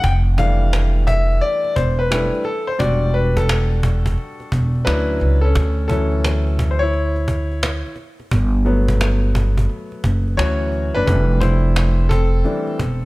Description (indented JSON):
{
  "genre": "hip hop, jazz-hop",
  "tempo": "87 BPM",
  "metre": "4/4",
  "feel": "swing 66% on 16ths",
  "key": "D major",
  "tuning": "A4 = 439 Hz",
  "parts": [
    { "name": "clear grand piano", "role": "accompaniment", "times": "0.0-13.1 s", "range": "E3 to G5", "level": "-21 LUFS", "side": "left 2 dB", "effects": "none" },
    { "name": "upright bass", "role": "bass", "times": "0.0-13.1 s", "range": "E1 to D2", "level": "-17 LUFS", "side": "equal", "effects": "none" },
    { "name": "cajon", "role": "drums", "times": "0.0-13.1 s", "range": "none", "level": "-24 LUFS", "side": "equal", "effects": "none" }
  ],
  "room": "studio reverb",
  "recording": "none",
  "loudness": "-16 LUFS",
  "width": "side -20 dB against mid",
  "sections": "0.0-5.6 A section; 5.6-13.1 B section",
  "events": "grand piano solo 0.0-5.6, 5.6-13.1",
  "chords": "0.0 Fmaj13; 2.8 Em9; 4.9 Dmaj7; 8.3 Gmaj9; 10.4 Dmaj7; 11.1 Fmaj13"
}